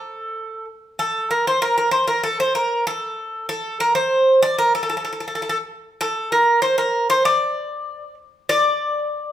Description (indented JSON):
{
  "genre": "greek folk",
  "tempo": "96 BPM",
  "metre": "2/4",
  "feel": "straight",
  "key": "unclear",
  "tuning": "A4 = 443 Hz",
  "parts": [
    { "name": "Greek bouzouki", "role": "solo", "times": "0.0-9.3 s", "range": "A4 to D5", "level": "-18 LUFS", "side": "equal", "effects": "none" }
  ],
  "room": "moderate large studio reverb, RT60 1.1 s",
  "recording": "band playing live in one room",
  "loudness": "-17 LUFS",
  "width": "side -11 dB against mid",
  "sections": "0.0-8.5 A section",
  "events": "none",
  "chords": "none",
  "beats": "0.37 | 0.99 1.62 | 2.25 2.87 | 3.50 4.12 | 4.74 5.37 | 5.99 6.62 | 7.24 7.86 | 8.49 9.11"
}